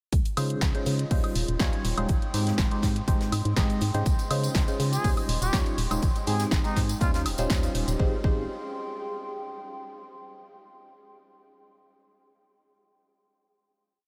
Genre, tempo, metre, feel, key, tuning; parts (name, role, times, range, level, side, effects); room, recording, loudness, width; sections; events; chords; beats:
piano house; 122 BPM; 4/4; straight; Ab major; A4 = 437 Hz
organ-like FM bass; bass; 0.1-8.5 s; Eb1 to Db3; -31 LUFS; equal; sidechain pumping
electronic kick drum; drums; 0.1-8.3 s; -28 LUFS; equal
punchy analog drum machine; drums; 0.1-8.0 s; hi-hat, snare drum, woodblock; -36 LUFS; equal
tight metal drum kit; drums; 0.1-8.0 s; hi-hat, snare drum; -46 LUFS; equal
warbly tape-like pad; texture; 0.9-9.9 s; Ab3 to C6; -41 LUFS; equal; chorus, built-in reverb, sidechain pumping
barking FM electric piano; riff; 0.4-8.4 s; Ab2 to Eb5; -34 LUFS; equal; phaser, sidechain pumping, analog delay
tambourine; percussion; 4.1-8.0 s; -42 LUFS; equal
trumpet with plunger mute; melody; 4.9-7.2 s; Eb4 to Ab4; -38 LUFS; equal; analog delay
moderate huge ambient reverb, RT60 6.4 s; dreamy mix soaked in reverb; -26 LUFS; mono
0.1-8.0 drop; 8.0-10.0 final chord
drop 0.1-8.0
0.1 Dbmaj9; 1.1 Eb13; 2.1 Abmaj7; 4.1 Dbmaj9; 5.0 Eb13; 6.0 Abmaj7; 7.0 Eb13; 8.0 Abmaj7
| 0.13 0.62 1.11 1.60 | 2.09 2.58 3.08 3.57 | 4.06 4.55 5.04 5.54 | 6.03 6.52 7.01 7.50 | 8.00 8.49 8.98 9.47